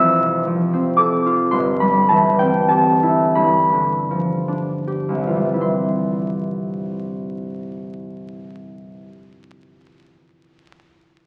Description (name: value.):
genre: classical.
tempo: 24-37 BPM (dotted quarters).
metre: 6/8.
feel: rubato.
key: C major.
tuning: A4 = 436 Hz.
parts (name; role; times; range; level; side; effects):
concert harp; accompaniment; 0.0-9.2 s; G1 to E6; -19 LUFS; equal; none.
room: wet scoring stage reverb, RT60 1.6 s.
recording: very old 78 rpm record, vinyl crackle.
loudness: -19 LUFS.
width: mono.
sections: 0.0-5.6 A section; 5.6-9.8 B section.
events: slowing down 0.0-5.6.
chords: 0.0 Fmaj7; 1.5 C/G; 3.4 G7; 5.6 C.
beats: | 1.53 3.37 | 5.63 7.72.